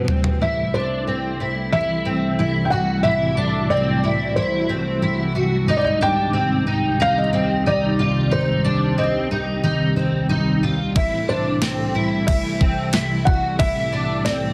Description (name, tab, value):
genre	dream pop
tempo	91 BPM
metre	4/4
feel	straight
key	unclear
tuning	A4 = 441 Hz
part	felt-muted upright piano	melody	0.0-14.5 s	C5 to G5	-26 LUFS	equal	digital delay
part	mellow electric guitar	accompaniment	0.0-14.5 s	Ab2 to E4	-28 LUFS	equal	tremolo, subtle chorus
part	string machine, cellos	sustained chords	0.0-14.5 s	C3 to C5	-26 LUFS	equal	phaser, ensemble chorus
part	fingerpicked twelve-string acoustic guitar	arpeggios	0.0-14.5 s	C4 to F#4	-26 LUFS	equal	ensemble chorus, digital delay
part	clean 12-bit digital drum machine	drums	0.1-0.4, 11.0-14.4 s	kick drum, ride cymbal, snare drum, tambourine, toms	-24 LUFS	equal	overdrive
room	moderate lush hall reverb, RT60 2.0 s, digital ambience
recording	dense, heavily limited modern master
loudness	-20 LUFS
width	mono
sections	0.4-14.5 A section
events	drum fill 0.0-0.4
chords	0.4 Am7; 5.7 Abmaj7; 11.0 Am7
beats	| 0.41 1.07 1.73 2.39 | 3.05 3.71 4.37 5.03 | 5.68 6.34 7.00 7.66 | 8.32 8.98 9.64 10.30 | 10.96 11.62 12.28 12.94 | 13.60 14.26